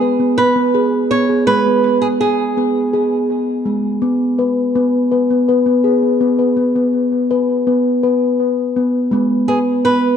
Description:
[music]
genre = world meditative, meditative tuned percussion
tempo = 165 BPM (eighths)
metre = 7/8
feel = straight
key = G# minor pentatonic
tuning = A4 = 440 Hz
[part]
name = flamenco guitar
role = melody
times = 0.0-3.3, 9.5-10.2 s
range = G#4 to C#5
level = -17 LUFS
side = right 3 dB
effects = tape echo
[part]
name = steel tongue drum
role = arpeggios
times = 0.0-10.2 s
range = G#3 to B4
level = -14 LUFS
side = left 1 dB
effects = tape echo
[sound]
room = wet echo chamber reverb, RT60 2.1 s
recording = dark, warm production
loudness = -13 LUFS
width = side -8 dB against mid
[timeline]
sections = 0.0-10.2 A section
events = none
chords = 0.0 G#m; 4.0 N.C.; 9.1 G#m

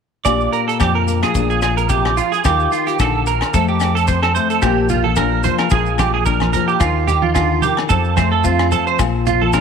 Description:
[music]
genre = highlife guitar band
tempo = 110 BPM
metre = 4/4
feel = swing 54% on 16ths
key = Bb major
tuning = A4 = 440 Hz
[part]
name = clean electric guitar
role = arpeggios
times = 0.2-9.6 s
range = F4 to D5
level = -18 LUFS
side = right 10 dB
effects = ensemble chorus, tape echo
[part]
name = nylon-string guitar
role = accompaniment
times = 0.3-9.6 s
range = F2 to A4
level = -21 LUFS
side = left 12 dB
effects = none
[part]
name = deep dub fingered electric bass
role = bass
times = 0.3-9.6 s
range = Bb1 to F2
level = -20 LUFS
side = left 1 dB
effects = none
[part]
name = tight funk drum kit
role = drums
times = 0.3-9.6 s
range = hi-hat, kick drum, rim click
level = -23 LUFS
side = left 1 dB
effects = none
[part]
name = agogo bells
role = percussion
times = 0.3-9.6 s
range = none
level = -27 LUFS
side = left 16 dB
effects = none
[part]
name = maracas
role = percussion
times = 0.3-9.6 s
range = none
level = -33 LUFS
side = left 14 dB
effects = none
[part]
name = congas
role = percussion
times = 4.9-9.5 s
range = none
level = -26 LUFS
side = right 9 dB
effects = none
[sound]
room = light reverb, studio reverb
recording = 1960s-style stereo with parts hard left and right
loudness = -14 LUFS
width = side -6 dB against mid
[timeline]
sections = 0.2-4.6 A section; 4.6-9.6 B section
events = none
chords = 0.2 Bb6; 1.3 Bb7; 2.4 Ebadd9; 3.5 F; 4.6 Bb6; 5.7 Bb7; 6.8 Ebadd9; 7.9 F; 9.0 Bb5

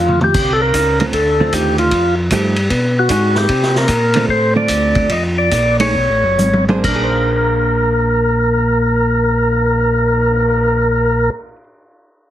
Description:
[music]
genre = soul jazz organ trio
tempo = 130-153 BPM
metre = 4/4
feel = swing 66% on 8ths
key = Bb mixolydian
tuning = A4 = 439 Hz
[part]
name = percussive tonewheel organ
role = melody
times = 0.0-11.3 s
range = F4 to Eb5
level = -15 LUFS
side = equal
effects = slow rotary speaker
[part]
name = tonewheel organ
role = bass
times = 0.0-11.3 s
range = F#1 to C3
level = -17 LUFS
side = equal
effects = slow rotary speaker
[part]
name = vintage drum kit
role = drums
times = 0.1-10.4 s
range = crash cymbal, cymbal swell, hi-hat, kick drum, ride cymbal, snare drum, toms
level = -20 LUFS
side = equal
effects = none
[part]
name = hollow-body jazz guitar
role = accompaniment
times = 1.0-11.6 s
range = D3 to C5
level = -21 LUFS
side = right 3 dB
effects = none
[sound]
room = moderate club reverb, RT60 0.5 s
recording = heavily compressed radio sound, multiband compression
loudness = -12 LUFS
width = side -12 dB against mid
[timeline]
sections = 0.3-6.8 A section; 6.8-10.5 B section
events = drum fill 0.0-0.3, 6.4-6.8; slowing down 3.5-6.8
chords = 0.3 Csus2; 1.1 Dm7; 1.9 F9; 2.7 B6; 3.5 Csus2; 4.3 Dm7; 5.1 F7; 5.9 Bsus2; 6.8 Bb9

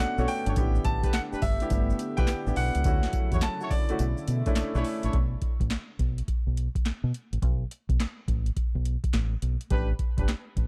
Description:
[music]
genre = R&B, new jack swing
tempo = 105 BPM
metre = 4/4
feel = swing 65% on 16ths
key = unclear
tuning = A4 = 441 Hz
[part]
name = bright concert grand piano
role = melody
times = 0.0-4.8 s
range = D5 to A5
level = -36 LUFS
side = equal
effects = delay
[part]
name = warm grand piano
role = accompaniment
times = 0.0-5.2 s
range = A3 to G4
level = -36 LUFS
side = equal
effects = none
[part]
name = warm analog pad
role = sustained chords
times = 0.0-5.1 s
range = C#3 to G4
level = -40 LUFS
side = equal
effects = chorus
[part]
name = deep dub fingered electric bass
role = bass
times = 0.0-10.7 s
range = G1 to B2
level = -30 LUFS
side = equal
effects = none
[part]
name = tube shaker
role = percussion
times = 0.0-5.1 s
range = none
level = -56 LUFS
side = equal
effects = none
[part]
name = mellow horn section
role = stabs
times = 0.2-5.1, 9.7-10.3 s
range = D4 to C#5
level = -39 LUFS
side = equal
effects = none
[part]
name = booming analog drum machine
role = drums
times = 0.3-10.7 s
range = handclaps, hi-hat, kick drum, snare drum, tambourine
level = -30 LUFS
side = equal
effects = overdrive
[sound]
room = small room ambience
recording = dark, warm production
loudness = -27 LUFS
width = mono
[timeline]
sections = 0.0-5.1 A section; 5.1-10.7 B section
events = none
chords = 0.0 Bm9; 0.6 A9sus4; 2.9 Dmaj9; 4.0 Bm11; 5.1 Asus2; 9.7 A9sus4

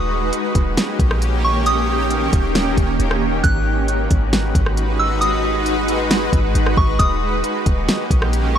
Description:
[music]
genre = hip hop, atmospheric cloud-rap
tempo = 135 BPM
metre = 4/4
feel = half-time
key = G# minor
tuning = A4 = 440 Hz
[part]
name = soft synth bell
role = melody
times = 0.0-8.6 s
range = C#6 to F#6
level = -24 LUFS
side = equal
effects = chorus, tape echo
[part]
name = shimmering ambient pad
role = sustained chords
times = 0.0-8.6 s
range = D#3 to B4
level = -20 LUFS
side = equal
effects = chorus, built-in reverb, sidechain pumping
[part]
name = clean 808-style bass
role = bass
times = 0.0-8.6 s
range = D#1 to A#1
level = -20 LUFS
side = equal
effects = none
[part]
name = smooth R&B drum kit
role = drums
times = 0.3-8.4 s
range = hi-hat, kick drum, rim click, snare drum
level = -19 LUFS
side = equal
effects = none
[sound]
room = little or no reverb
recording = dry, gritty hardware recording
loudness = -15 LUFS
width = side -9 dB against mid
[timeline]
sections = 0.0-8.6 A section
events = none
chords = 0.0 D#7; 3.4 G#m7; 7.0 D#7

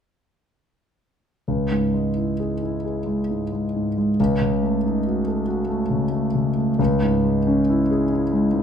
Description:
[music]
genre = classical, romantic nocturne for solo piano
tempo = 43-48 BPM (dotted quarters)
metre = 6/8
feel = rubato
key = C# minor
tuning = A4 = 440 Hz
[part]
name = clear concert grand piano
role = solo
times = 1.5-8.6 s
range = C#2 to A4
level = -19 LUFS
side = equal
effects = none
[sound]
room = wet stone room reverb, RT60 0.9 s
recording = minimal, uncompressed stereo recording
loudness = -19 LUFS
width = side -8 dB against mid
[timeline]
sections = 1.5-8.6 A section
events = none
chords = 1.5 C#m; 4.2 D#m7b5/C#; 6.8 C#m

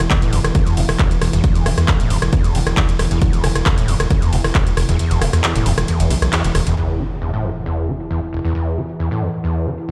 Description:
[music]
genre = driving peak-time techno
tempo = 135 BPM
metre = 4/4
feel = straight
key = unclear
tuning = A4 = 440 Hz
[part]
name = gritty driven synth bass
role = bass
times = 0.0-6.7 s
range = E1 to E2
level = -21 LUFS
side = equal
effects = tube saturation, sidechain pumping
[part]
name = analog drone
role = drone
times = 0.0-9.9 s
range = E3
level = -29 LUFS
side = equal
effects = chorus, sidechain pumping
[part]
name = techno drum kit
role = drums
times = 0.0-6.8 s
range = handclaps, hi-hat, ride cymbal, rim click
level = -24 LUFS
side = equal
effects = sidechain pumping on hats, low-pass filter on hats, low-pass filter on snare, sidechain pumping on cymbals, low-pass filter on cymbals, low-pass filter on room
[part]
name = overdriven acid bass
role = riff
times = 0.1-9.9 s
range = E1 to E3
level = -23 LUFS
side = equal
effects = distortion, analog chorus, sidechain pumping
[part]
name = electronic kick drum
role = drums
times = 0.1-4.6 s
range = none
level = -19 LUFS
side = equal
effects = none
[part]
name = impact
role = sound effects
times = 6.8-8.5 s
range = none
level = -31 LUFS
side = equal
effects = none
[sound]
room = little or no reverb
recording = played on a big sound system in a bare room, stone room reverb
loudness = -18 LUFS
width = mono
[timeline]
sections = 0.0-6.8 A section; 6.8-9.9 B section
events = drop 0.0-6.8; kick drops out 5.0-6.8; band accent 6.3; impact 6.8-8.5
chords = 0.0 E5; 6.8 N.C.

